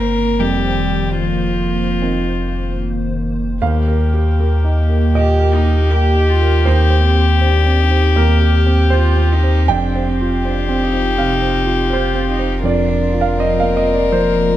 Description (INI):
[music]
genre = neoclassical piano and strings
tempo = 74-84 BPM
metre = 4/4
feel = rubato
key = unclear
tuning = A4 = 440 Hz
[part]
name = warm violin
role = melody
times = 0.0-14.6 s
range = F4 to Bb4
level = -20 LUFS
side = left 5 dB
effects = none
[part]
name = warm cello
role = second line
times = 0.0-14.6 s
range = F3 to G4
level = -23 LUFS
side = right 5 dB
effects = none
[part]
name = warm concert grand piano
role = accompaniment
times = 0.0-14.6 s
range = Eb2 to G5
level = -20 LUFS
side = right 2 dB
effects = none
[part]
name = hollow soft pad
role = sustained chords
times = 0.0-14.6 s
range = Eb3 to G5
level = -25 LUFS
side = left 1 dB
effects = ensemble chorus
[part]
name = pure sine sub bass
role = bass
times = 0.0-14.6 s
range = F1 to Eb2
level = -16 LUFS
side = equal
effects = none
[sound]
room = light reverb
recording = none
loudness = -13 LUFS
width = side -13 dB against mid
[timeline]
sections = 0.0-3.6 A section; 3.6-14.6 B section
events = none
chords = 0.4 F7sus4; 3.6 Eb; 6.7 Cm/Eb; 9.7 Fsus2; 12.6 Bb/F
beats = | 0.39 1.20 2.01 2.82 | 3.61 4.38 5.15 5.90 | 6.66 7.41 8.16 8.91 | 9.69 10.44 11.18 11.91 | 12.63 13.37 14.11